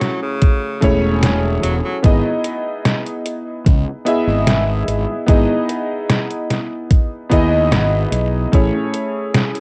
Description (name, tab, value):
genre	vaporwave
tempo	74 BPM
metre	4/4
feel	straight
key	E major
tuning	A4 = 439 Hz
part	edgy tenor saxophone	melody	0.0-2.0 s	C#3 to F#3	-28 LUFS	equal	vintage 12-bit sampler grit, cassette tape, tape echo
part	warm electric grand piano	accompaniment	0.0-9.6 s	A3 to E5	-21 LUFS	equal	lush chorus, vintage 12-bit sampler grit, analog delay
part	detuned 8-bit digital drum machine	drums	0.0-9.6 s	hi-hat, snare drum	-21 LUFS	equal	none
part	electronic kick drum	drums	0.4-8.7 s	none	-15 LUFS	equal	none
part	fuzz fingered electric bass	bass	0.8-8.7 s	E1 to D#2	-22 LUFS	equal	overdrive
room	light reverb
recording	home recording on cassette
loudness	-17 LUFS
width	mono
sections	0.0-9.6 A section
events	none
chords	0.0 Amaj7; 2.0 Emaj7/G#; 8.5 Amaj7